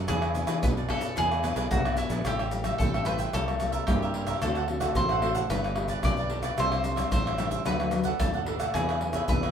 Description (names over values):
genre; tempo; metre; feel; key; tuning
samba and choro; 111 BPM; 4/4; straight; A minor; A4 = 442 Hz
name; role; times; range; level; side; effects
bowl-back mandolin; second line; 0.0-9.5 s; E4 to D5; -33 LUFS; equal; none
cavaquinho; accompaniment; 0.0-9.5 s; D4 to G5; -34 LUFS; right 7 dB; none
nylon-string guitar; accompaniment; 0.0-9.5 s; G2 to B4; -34 LUFS; left 3 dB; none
fuzz fingered electric bass; bass; 0.0-9.5 s; G1 to E3; -32 LUFS; equal; overdrive
egg shaker, surdo, pandeiro and tamborim; percussion; 0.1-9.5 s; none; -28 LUFS; left 1 dB; none
room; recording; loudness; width
moderate studio ambience, RT60 0.5 s; minimal, uncompressed stereo recording; -25 LUFS; side -8 dB against mid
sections
0.0-2.3 A section; 2.3-9.5 B section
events
none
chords
0.1 E7; 2.3 Am7; 3.3 C7; 4.4 D7; 5.5 G; 6.6 Cadd9; 7.7 D; 8.8 E7